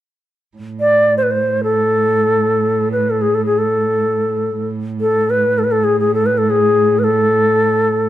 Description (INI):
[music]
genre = Arabic maqam ensemble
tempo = free time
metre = none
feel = none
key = A maqam nahawand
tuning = A4 = 440 Hz
[part]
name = dark cello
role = drone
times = 0.6-8.1 s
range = A2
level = -20 LUFS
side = right 4 dB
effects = none
[part]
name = bright reedy ney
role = melody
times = 0.8-8.1 s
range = G#4 to D5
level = -14 LUFS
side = left 1 dB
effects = plate reverb
[sound]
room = moderate studio reverb, RT60 0.6 s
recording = dark, warm production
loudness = -13 LUFS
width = side -13 dB against mid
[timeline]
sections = 0.6-8.1 A section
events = none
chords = none